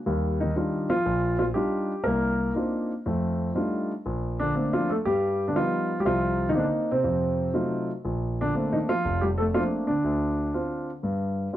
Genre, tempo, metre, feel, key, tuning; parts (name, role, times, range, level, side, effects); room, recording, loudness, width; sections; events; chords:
solo jazz; 120 BPM; 4/4; swing 68% on 8ths; Bb major; A4 = 441 Hz
dark concert grand piano; solo; 0.1-11.6 s; F1 to Bb4; -24 LUFS; equal
studio ambience; dry, close 1970s-style studio recording; -24 LUFS; side -13 dB against mid
0.0-11.6 A section
0.1 Ebmaj9; 2.0 Cm11; 3.0 F13; 4.0 Bbmaj9; 5.0 G7b13; 6.0 Cm9; 7.0 F7b9; 8.0 Bbmaj9; 10.0 Dm7; 11.0 G5